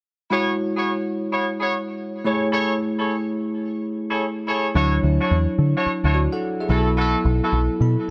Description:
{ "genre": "R&B", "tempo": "108 BPM", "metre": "4/4", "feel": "swing 65% on 16ths", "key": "E major", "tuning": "A4 = 435 Hz", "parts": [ { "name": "bell-like tine electric piano", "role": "accompaniment", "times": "0.3-8.1 s", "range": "F#3 to B5", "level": "-26 LUFS", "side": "equal", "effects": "phaser" }, { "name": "warm horn section", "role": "stabs", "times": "0.3-7.6 s", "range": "B3 to C#5", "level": "-27 LUFS", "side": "equal", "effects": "digital delay" }, { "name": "deep dub picked electric bass", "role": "bass", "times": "4.8-8.0 s", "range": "B1 to D3", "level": "-22 LUFS", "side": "equal", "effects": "none" } ], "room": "light reverb, studio ambience", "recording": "none", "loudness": "-22 LUFS", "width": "mono", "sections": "0.3-8.1 A section", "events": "tine electric piano fill 7.5-8.1", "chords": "0.3 E69; 2.3 Amaj7; 4.8 Dmaj9; 6.7 B7sus4" }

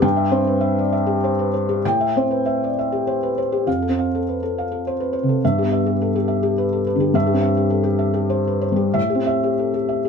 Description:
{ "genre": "neoclassical minimalist piano", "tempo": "94-105 BPM", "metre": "3/4", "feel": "rubato", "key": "unclear", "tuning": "A4 = 444 Hz", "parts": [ { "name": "felt-muted upright piano", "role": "solo", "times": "0.0-10.1 s", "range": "F2 to G5", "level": "-17 LUFS", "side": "left 1 dB", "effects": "none" } ], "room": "moderate studio reverb, RT60 0.6 s", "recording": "dark, warm production", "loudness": "-18 LUFS", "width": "side -6 dB against mid", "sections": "0.0-3.7 A section; 3.7-10.1 B section", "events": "none", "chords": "0.0 C/G; 1.8 Am7; 3.7 F; 5.4 G6; 7.1 C/G; 9.0 Am7" }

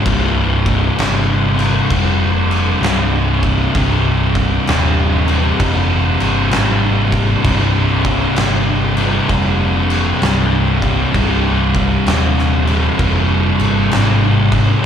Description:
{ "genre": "stoner and doom metal", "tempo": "65 BPM", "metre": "4/4", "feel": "swing 65% on 8ths", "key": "unclear", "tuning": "A4 = 440 Hz", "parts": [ { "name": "soft string machine", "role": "sustained chords", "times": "0.0-14.9 s", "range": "C3 to D4", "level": "-30 LUFS", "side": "right 2 dB", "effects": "none" }, { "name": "thick fuzz guitar", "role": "riff", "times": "0.0-14.9 s", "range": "C2 to C3", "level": "-18 LUFS", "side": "left 6 dB", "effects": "distortion, slapback echo" }, { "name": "thick fuzz guitar", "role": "riff", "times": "0.0-14.9 s", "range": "C2 to C3", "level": "-20 LUFS", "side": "right 10 dB", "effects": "distortion" }, { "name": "picked electric bass", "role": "bass", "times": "0.1-14.7 s", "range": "C1 to Ab1", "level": "-17 LUFS", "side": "equal", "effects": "overdrive" }, { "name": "oversized low-tuned drum kit", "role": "drums", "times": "0.1-14.7 s", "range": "crash cymbal, kick drum, snare drum", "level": "-19 LUFS", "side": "equal", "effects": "none" } ], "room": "light reverb", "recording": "live gig heard through the venue's PA, club reverb", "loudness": "-12 LUFS", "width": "side -8 dB against mid", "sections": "0.0-14.9 A section", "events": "none", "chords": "0.0 C5" }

